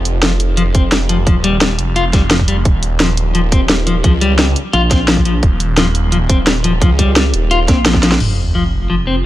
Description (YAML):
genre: dark technical drum and bass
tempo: 173 BPM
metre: 4/4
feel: straight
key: F minor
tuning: A4 = 439 Hz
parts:
  - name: phased detuned saw bass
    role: bass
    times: 0.0-9.3 s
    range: Eb1 to Db2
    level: -16 LUFS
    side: equal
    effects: phaser, overdrive, sidechain pumping
  - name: drum and bass drum kit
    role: drums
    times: 0.1-8.3 s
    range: crash cymbal, hi-hat, snare drum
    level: -16 LUFS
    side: equal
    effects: none
  - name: clean electric guitar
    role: arpeggios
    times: 0.2-9.1 s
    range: F3 to F4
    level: -17 LUFS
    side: left 3 dB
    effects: sidechain pumping, dub echo
  - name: electronic kick drum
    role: drums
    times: 0.7-8.0 s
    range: none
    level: -13 LUFS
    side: equal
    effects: none
  - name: pulsing pluck wobble bass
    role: bass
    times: 4.7-5.4, 7.7-8.2 s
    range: Bb1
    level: -15 LUFS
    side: equal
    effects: distortion, chorus
  - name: deep dark ambient pad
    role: sustained chords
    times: 8.8-9.3 s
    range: G3 to Ab5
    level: -31 LUFS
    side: right 4 dB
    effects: none
  - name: sub drop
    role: sound effects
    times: 8.2-9.3 s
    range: none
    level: -20 LUFS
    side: right 1 dB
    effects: none
room: light reverb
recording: none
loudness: -11 LUFS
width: side -14 dB against mid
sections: 0.0-8.2 A section; 8.2-9.3 B section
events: drum fill 7.9; impact 8.2-9.3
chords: 0.0 Fsus2; 2.7 Eb5; 8.2 Fmadd9